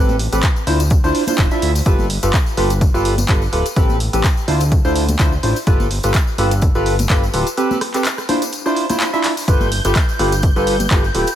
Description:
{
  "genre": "piano house",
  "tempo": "126 BPM",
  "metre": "4/4",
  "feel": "swing 55% on 16ths",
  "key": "G mixolydian",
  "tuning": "A4 = 438 Hz",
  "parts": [
    { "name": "percussive organ stab", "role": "riff", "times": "0.0-11.3 s", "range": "C4 to E5", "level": "-19 LUFS", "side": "equal", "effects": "lush chorus, sidechain pumping, tape echo" },
    { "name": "fat analog bass", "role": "bass", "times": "0.0-11.2 s", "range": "D1 to D2", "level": "-19 LUFS", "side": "equal", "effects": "sidechain pumping" },
    { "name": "congas and tambourine", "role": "percussion", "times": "0.1-11.4 s", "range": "none", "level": "-28 LUFS", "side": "left 3 dB", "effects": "none" },
    { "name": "punchy analog drum machine", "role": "drums", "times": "0.2-11.4 s", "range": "handclaps, hi-hat, rim click", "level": "-23 LUFS", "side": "equal", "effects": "none" },
    { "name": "electronic kick drum", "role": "drums", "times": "0.4-11.0 s", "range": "none", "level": "-16 LUFS", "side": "equal", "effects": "none" },
    { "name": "string machine, violins", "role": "sustained chords", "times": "9.5-11.4 s", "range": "G6", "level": "-25 LUFS", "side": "equal", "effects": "ensemble chorus, sidechain pumping" }
  ],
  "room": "light reverb, digital ambience",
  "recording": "none",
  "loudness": "-14 LUFS",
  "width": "side -11 dB against mid",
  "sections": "0.0-11.4 A section",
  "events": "break 7.6-9.5; drum fill 9.2",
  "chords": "0.0 Am9; 0.7 Dm9; 1.9 G9; 3.8 Am9; 4.5 Dm9; 5.7 G9; 7.6 Am9; 8.3 Dm9; 9.5 G9"
}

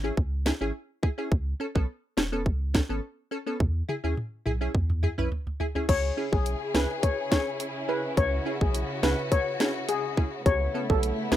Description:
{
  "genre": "dancehall",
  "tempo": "105 BPM",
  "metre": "4/4",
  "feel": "straight",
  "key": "C# minor",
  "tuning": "A4 = 438 Hz",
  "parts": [
    { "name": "wavetable chord stab", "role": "accompaniment", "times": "0.0-11.4 s", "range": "B3 to B4", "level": "-32 LUFS", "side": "equal", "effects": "none" },
    { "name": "warm sub bass", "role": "bass", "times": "0.0-11.4 s", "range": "E1 to E2", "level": "-28 LUFS", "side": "equal", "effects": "none" },
    { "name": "island pop drum kit", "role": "drums", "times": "0.2-11.4 s", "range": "crash cymbal, hi-hat, kick drum, rim click, snare drum, toms", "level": "-26 LUFS", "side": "equal", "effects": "none" },
    { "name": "steel pan", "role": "melody", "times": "5.9-11.4 s", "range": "G#4 to C#5", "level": "-29 LUFS", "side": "left 2 dB", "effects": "digital delay" },
    { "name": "warm symphonic string section", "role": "sustained chords", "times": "5.9-11.4 s", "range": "C#3 to G#4", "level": "-33 LUFS", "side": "left 1 dB", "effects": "sidechain pumping" },
    { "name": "bongos", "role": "percussion", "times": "10.5-11.4 s", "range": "none", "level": "-38 LUFS", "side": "right 1 dB", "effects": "none" }
  ],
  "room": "little or no reverb",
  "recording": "rough home demo mix",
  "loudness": "-25 LUFS",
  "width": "side -12 dB against mid",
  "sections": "0.0-5.9 A section; 5.9-11.4 B section",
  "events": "drum fill 3.6-5.9",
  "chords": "0.0 C#m; 1.3 Aadd9; 3.6 E6; 5.9 C#m; 10.5 Aadd9"
}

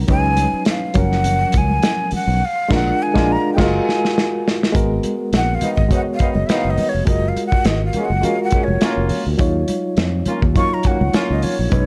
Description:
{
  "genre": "lush 1970s-style soul",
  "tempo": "103 BPM",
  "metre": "4/4",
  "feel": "swing 54% on 16ths",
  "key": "G# dorian",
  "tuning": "A4 = 443 Hz",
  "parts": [
    { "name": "barky reed electric piano", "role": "accompaniment", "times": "0.0-11.9 s", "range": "E#3 to C#5", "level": "-24 LUFS", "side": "equal", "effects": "overdrive, fast tremolo" },
    { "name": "fingered electric bass", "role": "bass", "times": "0.0-11.9 s", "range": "E#1 to E#2", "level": "-22 LUFS", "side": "equal", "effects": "none" },
    { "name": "breathy jazz flute", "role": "melody", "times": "0.1-11.9 s", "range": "C#5 to C#6", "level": "-24 LUFS", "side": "equal", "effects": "none" },
    { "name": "warm soul drum kit", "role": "drums", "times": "0.1-11.9 s", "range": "crash cymbal, hi-hat, kick drum, snare drum", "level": "-22 LUFS", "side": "equal", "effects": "none" },
    { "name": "congas", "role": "percussion", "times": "0.1-11.9 s", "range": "none", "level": "-30 LUFS", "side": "equal", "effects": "none" },
    { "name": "warm horn section", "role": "stabs", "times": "5.6-11.6 s", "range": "D#3 to F#4", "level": "-28 LUFS", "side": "equal", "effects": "none" }
  ],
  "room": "light reverb, small room ambience",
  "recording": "dark, warm production",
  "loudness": "-18 LUFS",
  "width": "mono",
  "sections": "0.0-4.7 A section; 4.7-11.9 B section",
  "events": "band accent 2.4-4.7; drum fill 3.6-4.7; flute solo 4.7-11.9",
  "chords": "0.1 C#9sus4; 1.0 F#maj7; 2.4 A#7; 3.6 F#maj9; 4.7 G#m9; 7.1 F#maj9; 9.4 D#m9"
}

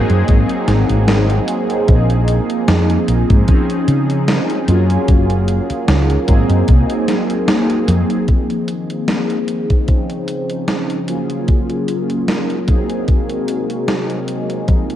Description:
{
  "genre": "vaporwave",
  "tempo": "75 BPM",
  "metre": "4/4",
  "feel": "swing 54% on 16ths",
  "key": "unclear",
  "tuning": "A4 = 440 Hz",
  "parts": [
    { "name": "mellow synth brass", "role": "accompaniment", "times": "0.0-15.0 s", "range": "F3 to Ab4", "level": "-18 LUFS", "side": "equal", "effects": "phaser, lush chorus, analog delay" },
    { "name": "woody fretless electric bass", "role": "bass", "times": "0.0-8.0 s", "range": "Gb1 to Db3", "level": "-14 LUFS", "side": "equal", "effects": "tube saturation" },
    { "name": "gated 80s digital drum machine", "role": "drums", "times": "0.1-15.0 s", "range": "hi-hat, snare drum", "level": "-21 LUFS", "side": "equal", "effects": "gated reverb, gated reverb snare, studio reverb" },
    { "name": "electronic kick drum", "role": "drums", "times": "0.3-14.9 s", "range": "none", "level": "-12 LUFS", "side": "equal", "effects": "studio reverb" },
    { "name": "warbly tape-like pad", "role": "sustained chords", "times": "8.3-15.0 s", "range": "C3 to C5", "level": "-25 LUFS", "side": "left 2 dB", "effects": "chorus, built-in reverb" }
  ],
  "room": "light reverb",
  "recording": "dark, warm production",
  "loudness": "-13 LUFS",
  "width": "side -11 dB against mid",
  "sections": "0.0-8.3 A section; 8.3-15.0 B section",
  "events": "none",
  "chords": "0.0 Ab9; 1.9 Bb9sus4; 3.5 Dbmaj9; 4.7 Gbmaj7; 6.3 Ab9; 8.3 Bb9sus4; 9.9 Dbmaj9; 11.1 Gbmaj7; 12.7 Ab9"
}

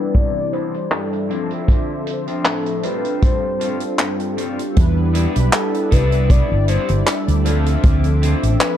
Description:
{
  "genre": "vaporwave",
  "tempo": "78 BPM",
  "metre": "4/4",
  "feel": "swing 54% on 16ths",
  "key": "D dorian",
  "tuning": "A4 = 438 Hz",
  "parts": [
    { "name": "warm velvety synth lead", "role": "melody", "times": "0.0-8.8 s", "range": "A4 to D5", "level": "-25 LUFS", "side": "left 2 dB", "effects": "chorus, tape echo" },
    { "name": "mellow synth brass", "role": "accompaniment", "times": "0.0-8.8 s", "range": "F3 to E5", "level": "-24 LUFS", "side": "left 1 dB", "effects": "analog chorus, tape echo" },
    { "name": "lush unison pad", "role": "sustained chords", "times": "0.0-8.8 s", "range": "E3 to D6", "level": "-30 LUFS", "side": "left 1 dB", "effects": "chorus, phaser" },
    { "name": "electric guitar at the edge of break-up", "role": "riff", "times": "0.0-8.4 s", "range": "G2 to F4", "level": "-29 LUFS", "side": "left 2 dB", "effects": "wide subtle chorus, low-pass filter, tape echo" },
    { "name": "kick drum", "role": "drums", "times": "0.1-8.0 s", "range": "none", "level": "-14 LUFS", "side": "equal", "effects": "none" },
    { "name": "natural country drum kit", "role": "drums", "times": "0.1-8.8 s", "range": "handclaps, hi-hat", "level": "-23 LUFS", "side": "equal", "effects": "none" },
    { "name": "fretless electric bass", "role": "bass", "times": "4.8-8.6 s", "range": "G1 to E2", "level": "-16 LUFS", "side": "equal", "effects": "lush chorus" }
  ],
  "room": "light reverb, small room ambience",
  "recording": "dark, warm production, low-pass filter",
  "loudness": "-15 LUFS",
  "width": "side -10 dB against mid",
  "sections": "0.0-4.8 A section; 4.8-8.8 B section",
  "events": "filter sweep 0.0-4.8",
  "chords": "0.0 Cmaj9; 1.3 Dm9; 2.8 G9sus4; 4.8 Em7; 5.9 Cmaj9; 7.5 Dm9"
}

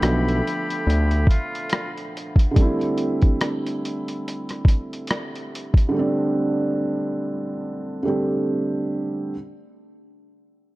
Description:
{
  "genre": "lo-fi hip hop",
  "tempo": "71 BPM",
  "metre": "4/4",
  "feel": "swing 57% on 16ths",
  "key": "C major",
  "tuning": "A4 = 442 Hz",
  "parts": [
    { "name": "trumpet with metal mute", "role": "melody", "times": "0.0-1.9 s", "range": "F4 to G4", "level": "-30 LUFS", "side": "left 2 dB", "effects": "tape echo" },
    { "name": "felt-muted upright piano", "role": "accompaniment", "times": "0.0-9.3 s", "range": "D3 to E5", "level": "-24 LUFS", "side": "right 1 dB", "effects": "cassette tape" },
    { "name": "hollow soft pad", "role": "sustained chords", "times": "0.0-2.5 s", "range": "A4 to B5", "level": "-33 LUFS", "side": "left 2 dB", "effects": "chorus" },
    { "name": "fat analog bass", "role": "bass", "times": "0.0-1.3 s", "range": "B1 to D2", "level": "-19 LUFS", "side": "equal", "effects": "none" },
    { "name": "lo-fi sampler-style drum kit", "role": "drums", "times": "0.0-5.9 s", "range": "hi-hat, kick drum, rim click", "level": "-19 LUFS", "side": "equal", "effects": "overdrive" }
  ],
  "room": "small room reverb",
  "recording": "dark, warm production",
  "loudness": "-20 LUFS",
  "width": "side -19 dB against mid",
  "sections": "0.0-9.3 A section",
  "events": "none",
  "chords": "0.0 G13; 2.6 C6"
}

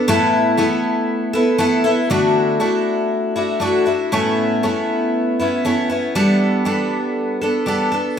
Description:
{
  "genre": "rock",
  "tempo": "118 BPM",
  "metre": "4/4",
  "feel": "straight",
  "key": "D major",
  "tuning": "A4 = 441 Hz",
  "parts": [
    { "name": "picked twelve-string acoustic guitar", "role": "solo", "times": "0.0-8.2 s", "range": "A2 to A4", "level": "-16 LUFS", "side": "left 1 dB", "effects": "none" }
  ],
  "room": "moderate large studio reverb, RT60 0.9 s",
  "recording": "band playing live in one room",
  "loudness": "-16 LUFS",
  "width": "side -8 dB against mid",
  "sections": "0.0-2.1 A section; 2.1-8.2 B section",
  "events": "none",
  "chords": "0.1 Asus2; 2.1 Dadd9; 4.1 Aadd9; 6.2 Gadd9"
}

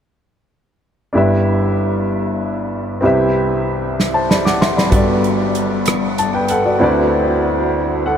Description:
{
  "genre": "slow gospel",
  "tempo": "64 BPM (dotted quarters)",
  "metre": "6/8",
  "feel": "straight",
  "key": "G major",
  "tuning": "A4 = 439 Hz",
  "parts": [
    { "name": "clear baby grand piano", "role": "accompaniment", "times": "1.1-8.2 s", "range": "G1 to D6", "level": "-14 LUFS", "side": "equal", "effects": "none" },
    { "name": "natural country drum kit", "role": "drums", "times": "4.0-6.6 s", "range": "hi-hat, kick drum, rim click, snare drum", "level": "-19 LUFS", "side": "right 1 dB", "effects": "none" }
  ],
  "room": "wet huge ambient reverb, RT60 7.4 s",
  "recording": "dreamy mix soaked in reverb",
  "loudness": "-14 LUFS",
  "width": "side -8 dB against mid",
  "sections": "1.2-8.2 A section",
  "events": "drum fill 4.0-4.9",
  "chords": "1.2 G6; 3.0 Cmaj7; 4.9 Gmaj9; 6.8 D13"
}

